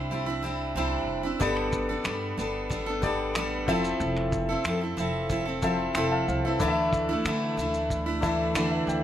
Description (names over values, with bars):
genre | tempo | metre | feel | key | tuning
acoustic pop | 92 BPM | 4/4 | straight | G mixolydian | A4 = 445 Hz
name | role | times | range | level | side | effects
picked steel-string acoustic guitar | accompaniment | 0.0-9.0 s | C3 to A4 | -27 LUFS | right 1 dB | none
upright bass | bass | 0.0-9.0 s | F1 to D3 | -34 LUFS | equal | none
clear grand piano | accompaniment | 1.4-9.0 s | B3 to C6 | -31 LUFS | left 4 dB | none
cloth-damped thuddy drum kit | drums | 1.4-9.0 s | finger snaps, kick drum, shaker | -32 LUFS | equal | none
room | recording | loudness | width
light reverb | none | -25 LUFS | side -11 dB against mid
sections
0.0-9.0 A section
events
grand piano fill 5.3-6.6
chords
0.0 Cadd9; 1.4 Gadd9; 3.7 Fmaj7; 6.6 Dsus2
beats
0.10 0.76 | 1.41 2.06 2.71 3.36 | 4.01 4.66 5.30 5.96 | 6.60 7.25 7.90 8.55